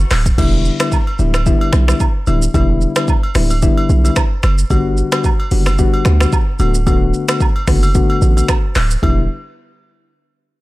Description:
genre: afrobeats.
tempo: 111 BPM.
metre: 4/4.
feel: swing 55% on 16ths.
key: E minor.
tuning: A4 = 440 Hz.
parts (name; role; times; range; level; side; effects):
warm 808-style bass; bass; 0.0-9.3 s; D1 to D2; -14 LUFS; equal; none.
afro-pop drum kit; drums; 0.1-9.2 s; crash cymbal, finger snaps, handclaps, hi-hat, kick drum, rim click, shaker; -16 LUFS; equal; none.
agogo bells and woodblock; percussion; 0.1-9.3 s; none; -25 LUFS; right 3 dB; none.
soft electric-piano-like synth keys; accompaniment; 0.4-9.2 s; D3 to F#4; -18 LUFS; left 4 dB; chorus, low-pass filter.
room: digital ambience.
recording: none.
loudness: -12 LUFS.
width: side -18 dB against mid.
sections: 0.4-9.0 A section; 9.0-10.6 B section.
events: filter sweep on synth keys 0.4-9.0.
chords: 0.4 Em7; 4.7 Gmaj7; 6.6 D6; 9.0 Em7.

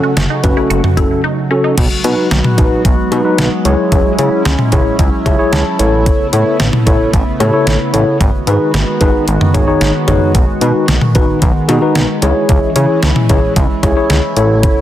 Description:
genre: synth-pop.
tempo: 112 BPM.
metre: 4/4.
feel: straight.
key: B mixolydian.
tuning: A4 = 438 Hz.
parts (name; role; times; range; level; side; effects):
mellow tine electric piano; accompaniment; 0.0-14.8 s; C#4 to A5; -15 LUFS; left 2 dB; medium stereo tremolo.
chorused pulse-width pad; sustained chords; 0.0-14.8 s; C#3 to F#4; -18 LUFS; equal; none.
resonant blip pluck; arpeggios; 0.0-1.7 s; C#4 to F#4; -22 LUFS; right 2 dB; phaser, tape echo.
chorused synth bass; bass; 0.2-14.7 s; F#1 to C#3; -15 LUFS; equal; none.
detuned 8-bit digital drum machine; drums; 0.2-14.8 s; cowbell, crash cymbal, hi-hat, kick drum, snare drum, toms; -14 LUFS; equal; none.
room: light reverb, digital ambience.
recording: dense, heavily limited modern master.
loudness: -10 LUFS.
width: side -12 dB against mid.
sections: 0.0-1.8 A section; 1.8-14.8 B section.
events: tine electric piano fill 5.0-6.1.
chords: 0.0 F#m; 1.8 B6; 3.7 C#m; 5.8 Aadd9; 8.2 G#m7; 10.3 B6; 12.2 C#m.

